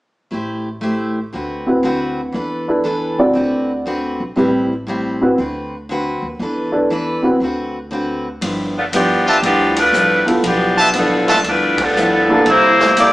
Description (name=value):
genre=jazz, big band swing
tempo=119 BPM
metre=4/4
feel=swing 67% on 8ths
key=G mixolydian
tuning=A4 = 439 Hz
part: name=picked steel-string acoustic guitar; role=accompaniment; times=0.3-13.1 s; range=G2 to C5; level=-21 LUFS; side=equal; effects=none
part: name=upright bass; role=bass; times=0.3-13.1 s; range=G1 to E2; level=-29 LUFS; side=equal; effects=none
part: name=warm baby grand piano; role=accompaniment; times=1.7-12.5 s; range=Bb3 to D5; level=-16 LUFS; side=equal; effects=none
part: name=swinging big-band drum kit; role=drums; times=8.4-13.1 s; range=hi-hat, kick drum, ride cymbal, snare drum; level=-23 LUFS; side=equal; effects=none
part: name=bright saxophone section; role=melody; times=8.8-13.1 s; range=F3 to D5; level=-13 LUFS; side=equal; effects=none
part: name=brilliant trumpet section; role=stabs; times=9.3-11.4 s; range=F4 to A5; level=-15 LUFS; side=equal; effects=none
room=wet stone room reverb, RT60 1.0 s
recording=band playing live in one room, small speaker sound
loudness=-14 LUFS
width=side -17 dB against mid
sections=0.3-8.4 A section; 8.4-13.1 B section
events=band accent 11.7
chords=0.3 Am7; 1.3 D13; 2.4 E7sus4; 3.4 D13; 4.4 Am7; 5.4 D6; 6.4 E7sus4; 7.4 D6; 8.4 G13; 12.5 C13